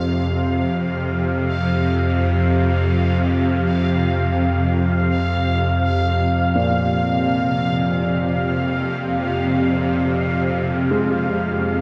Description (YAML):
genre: dark ambient drone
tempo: free time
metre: none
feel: none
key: F minor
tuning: A4 = 440 Hz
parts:
  - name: bowed-like drone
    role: drone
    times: 0.0-11.8 s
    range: F2 to C3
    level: -20 LUFS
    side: equal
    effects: built-in reverb
  - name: bubbling stepped-filter texture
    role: texture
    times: 0.0-11.8 s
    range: F5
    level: -28 LUFS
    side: equal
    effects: chorus, built-in reverb
  - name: warm concert grand piano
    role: arpeggios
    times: 6.6-11.8 s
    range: Bb2 to Ab3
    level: -28 LUFS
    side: equal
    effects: delay
room: wet cathedral reverb, RT60 4.8 s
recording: dark, warm production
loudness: -20 LUFS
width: mono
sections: 0.0-11.8 A section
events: none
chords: none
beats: free time